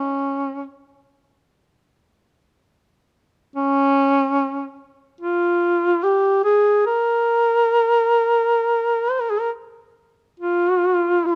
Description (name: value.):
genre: caucasian folk, Caucasian lament.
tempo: 65-74 BPM.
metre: 4/4.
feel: rubato.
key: Bb dorian.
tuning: A4 = 438 Hz.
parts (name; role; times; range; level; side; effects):
mellow duduk; solo; 0.0-11.4 s; Db4 to C5; -19 LUFS; equal; none.
room: light reverb.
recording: none.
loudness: -19 LUFS.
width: mono.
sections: 0.0-10.4 A section.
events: none.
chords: none.